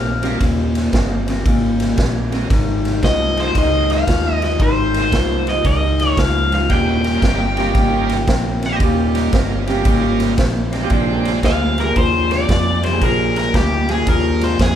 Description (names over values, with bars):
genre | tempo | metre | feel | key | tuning
electric blues shuffle | 114 BPM | 4/4 | swing 66% on 8ths | Eb mixolydian | A4 = 440 Hz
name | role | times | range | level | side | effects
overdriven electric guitar | melody | 0.0-14.8 s | G4 to G5 | -20 LUFS | left 1 dB | phaser
electric guitar through a small old amp | riff | 0.0-14.8 s | Eb2 to G3 | -20 LUFS | left 3 dB | none
vintage muted fingered electric bass | bass | 0.0-14.8 s | Eb1 to F2 | -21 LUFS | equal | none
bright tonewheel organ | accompaniment | 0.2-14.6 s | G3 to G4 | -26 LUFS | right 6 dB | slow rotary speaker, overdrive
raw garage drum kit | drums | 0.2-14.8 s | kick drum, ride cymbal, snare drum | -19 LUFS | right 1 dB | none
clear saxophone section | stabs | 6.7-14.5 s | C4 to Ab4 | -25 LUFS | right 9 dB | none
room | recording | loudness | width
light reverb | band playing live in one room | -14 LUFS | side -10 dB against mid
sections
0.0-14.8 A section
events
none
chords
0.0 Eb9; 2.5 Ab9; 6.7 Eb9; 10.9 Bb9